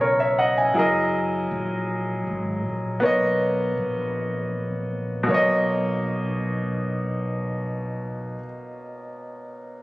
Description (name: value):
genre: slow six-eight R&B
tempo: 53 BPM (dotted quarters)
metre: 6/8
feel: straight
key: B major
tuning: A4 = 438 Hz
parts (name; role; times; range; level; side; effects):
- clear concert grand piano; accompaniment; 0.0-9.8 s; B2 to G#5; -23 LUFS; equal; none
- fretless electric bass; bass; 0.0-8.4 s; F#1 to B1; -29 LUFS; equal; none
room: light reverb, small room ambience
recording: recorded on a phone in the room, club reverb, compression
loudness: -22 LUFS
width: side -19 dB against mid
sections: 0.0-5.3 A section; 5.3-7.5 B section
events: none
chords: 0.0 C#m9; 0.8 F#13; 3.0 Bmaj9